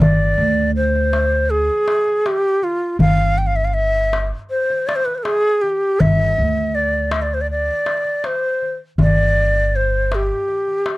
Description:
Turkish makam ensemble; 80 BPM; 4/4; straight; G makam hicaz; A4 = 440 Hz
breathy bright ney; melody; 0.0-11.0 s; F4 to G5; -18 LUFS; equal
upright bass; bass; 0.0-10.3 s; G1 to D2; -19 LUFS; right 1 dB
darbuka; percussion; 0.0-11.0 s; -20 LUFS; left 2 dB
little or no reverb; dry, close 1970s-style studio recording; -16 LUFS; side -19 dB against mid
0.0-11.0 A section

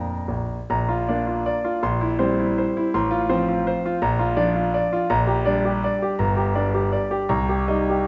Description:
classical, romantic triple-time dance for piano with dotted rhythms; 164 BPM; 3/4; uneven beats, rubato; Bb major; A4 = 440 Hz
bright concert grand piano; solo; 0.0-8.1 s; G1 to C6; -22 LUFS; equal
wet recital hall reverb, RT60 1.4 s; dark, warm production, nothing above 7.7 kHz; -22 LUFS; mono
0.7-8.1 A section
0.0 Bb; 1.8 C7/Bb; 2.9 F/A; 4.0 Bb; 5.1 Gm/Bb; 6.2 Gm; 7.3 Cm7

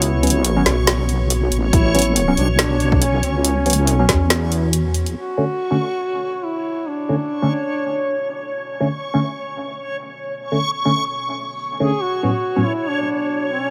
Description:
deep dubstep; 140 BPM; 4/4; swing 56% on 16ths, half-time; B minor; A4 = 440 Hz
mellow duduk; melody; 0.0-8.4, 11.8-13.7 s; C#4 to G#4; -26 LUFS; equal; dub echo
dark analog pad; sustained chords; 0.0-13.7 s; B3 to F#4; -32 LUFS; equal; chorus, phaser
deep soft wobble bass; bass; 0.0-5.1 s; A1 to E2; -21 LUFS; equal; chorus
deep house drum kit; drums; 0.0-5.1 s; hi-hat, snare drum; -22 LUFS; equal
backwards swelling texture; texture; 0.0-13.7 s; C#5; -28 LUFS; equal; built-in reverb
tine electric piano; stabs; 0.2-12.6 s; A2 to C#4; -24 LUFS; equal; phaser, low-pass filter, dub echo
electronic kick drum; drums; 1.7-4.2 s; -20 LUFS; equal
light reverb, digital ambience; -19 LUFS; mono
0.0-5.2 A section; 5.2-13.7 B section
drop 0.0-5.2; filter sweep on analog synth pad 5.2-13.7
0.0 A6; 5.2 Bm; 12.0 A6 (rootless)

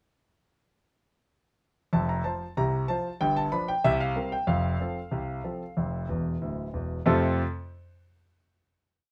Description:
ragtime piano; 94 BPM; 2/4; straight; F major; A4 = 440 Hz
clear concert grand piano; solo; 1.9-7.4 s; D1 to B5; -28 LUFS; equal
moderate studio reverb, RT60 0.5 s; -28 LUFS; mono
1.9-7.0 A section; 7.0-8.3 final chord
grand piano fill 6.1-7.0
1.9 F5; 3.2 G7; 3.8 C5; 4.5 F

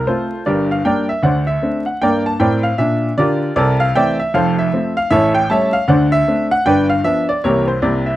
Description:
jazz, stride piano; 155 BPM; 4/4; swing 62% on 8ths; A4 = 438 Hz
clear grand piano; solo; 0.0-8.2 s; F1 to A5; -14 LUFS; equal
little or no reverb; dry, close 1970s-style studio recording, vinyl crackle; -13 LUFS; side -14 dB against mid
0.0-8.2 A section
0.5 Gm; 1.2 D5; 2.0 Gm; 3.6 C13; 4.3 F; 5.1 A7; 5.9 D5; 6.7 G7; 7.4 C7b9

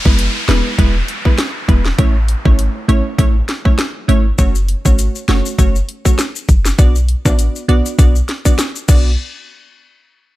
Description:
dancehall; 100 BPM; 4/4; swing 56% on 16ths; B dorian; A4 = 437 Hz
downlifter; sound effects; 0.0-4.4 s; -24 LUFS; equal
wavetable chord stab; accompaniment; 0.1-9.1 s; G#3 to D5; -20 LUFS; right 2 dB; sidechain pumping
clean 808-style bass; bass; 0.1-9.2 s; E1 to B1; -14 LUFS; equal
island pop drum kit; drums; 0.1-9.0 s; crash cymbal, hi-hat, kick drum, rim click, snare drum; -14 LUFS; equal
maracas and timbales; percussion; 4.4-9.2 s; -25 LUFS; left 6 dB
little or no reverb; -12 LUFS; side -17 dB against mid
0.0-9.2 A section; 9.2-10.4 B section
0.0 E; 2.0 A; 4.4 F#m; 6.8 Bm; 9.2 N.C.

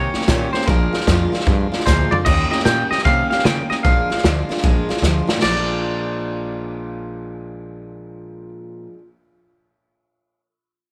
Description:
rockabilly; 151 BPM; 4/4; swing 64% on 8ths; Bb mixolydian; A4 = 442 Hz
twangy electric guitar; melody; 0.0-8.5 s; Bb4 to G5; -24 LUFS; equal; tape echo
picked steel-string acoustic guitar; accompaniment; 0.0-9.1 s; Bb2 to G4; -26 LUFS; equal
upright bass; bass; 0.0-8.5 s; Bb1 to Db3; -24 LUFS; equal
vintage drum kit; drums; 0.1-5.5 s; crash cymbal, hi-hat, kick drum, snare drum, toms; -22 LUFS; equal
light reverb, studio ambience; -18 LUFS; mono
0.0-2.3 A section; 2.3-5.4 B section; 5.4-8.6 C section
drum fill 1.9-2.3, 5.0-5.4
0.0 Eb7; 0.7 Bb7; 2.3 Eb7; 3.8 Bb7

